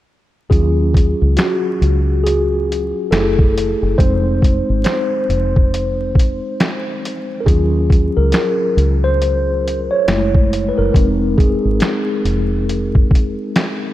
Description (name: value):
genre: lo-fi hip hop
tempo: 69 BPM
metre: 4/4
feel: swing 62% on 16ths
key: Eb dorian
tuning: A4 = 439 Hz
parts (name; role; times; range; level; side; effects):
- mellow tine electric piano; accompaniment; 0.5-13.9 s; Gb3 to Db5; -18 LUFS; equal; medium stereo tremolo, cassette tape, low-pass filter
- deep dub fingered electric bass; bass; 0.5-13.3 s; F1 to Eb2; -18 LUFS; equal; none
- lo-fi sampler-style drum kit; drums; 0.5-13.8 s; finger snaps, hi-hat, kick drum, snare drum; -15 LUFS; equal; none
room: light reverb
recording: vinyl crackle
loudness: -13 LUFS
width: side -14 dB against mid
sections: 0.5-13.9 A section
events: tine electric piano solo 0.5-13.9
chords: 0.5 Ebm7; 3.1 Gbm7; 4.0 Fm7; 7.5 Ebm7; 10.1 Gbm7; 10.9 Fm7